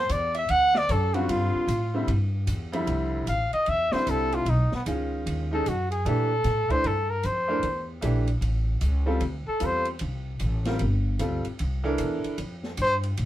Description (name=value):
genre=jazz, small-group swing and bop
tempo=151 BPM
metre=4/4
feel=swing 64% on 8ths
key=F major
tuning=A4 = 439 Hz
part: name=warm trumpet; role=melody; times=0.0-9.9, 12.7-13.0 s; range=B3 to F#5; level=-25 LUFS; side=equal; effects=none
part: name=growling alto saxophone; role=second line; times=0.0-2.1 s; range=F4 to F#5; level=-31 LUFS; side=right 4 dB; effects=none
part: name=upright bass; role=bass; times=0.0-13.3 s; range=G1 to Bb2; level=-27 LUFS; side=equal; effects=none
part: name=open jazz drum kit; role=drums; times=0.1-13.3 s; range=hi-hat, kick drum, ride cymbal, snare drum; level=-39 LUFS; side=equal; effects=none
part: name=bright upright piano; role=accompaniment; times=1.1-12.4 s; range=F2 to Bb4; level=-29 LUFS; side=right 1 dB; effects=none
room=moderate small room ambience, RT60 0.5 s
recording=band playing live in one room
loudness=-23 LUFS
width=side -13 dB against mid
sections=0.0-2.9 A section; 2.9-13.3 B section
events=trumpet solo 2.9-13.3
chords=0.5 D7; 1.3 G5; 2.1 Cadd9; 2.9 Fmaj7; 4.5 Badd9; 6.1 Bbmaj9; 7.6 Em7b5; 8.4 A7; 9.2 Dm9; 10.8 G5; 11.6 C7; 12.4 N.C.